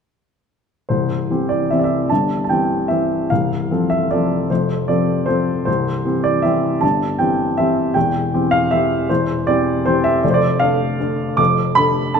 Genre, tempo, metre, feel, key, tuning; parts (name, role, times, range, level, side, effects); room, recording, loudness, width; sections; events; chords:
classical, piano waltz; 145-168 BPM; 3/4; rubato; C major; A4 = 440 Hz
clear upright piano; solo; 0.9-12.2 s; C1 to D6; -15 LUFS; equal
wet recital hall reverb, RT60 1.4 s; -15 LUFS; side -6 dB against mid
0.9-12.2 A section
0.9 C; 3.3 F/C; 5.7 C; 8.0 C/E; 10.2 Dm/F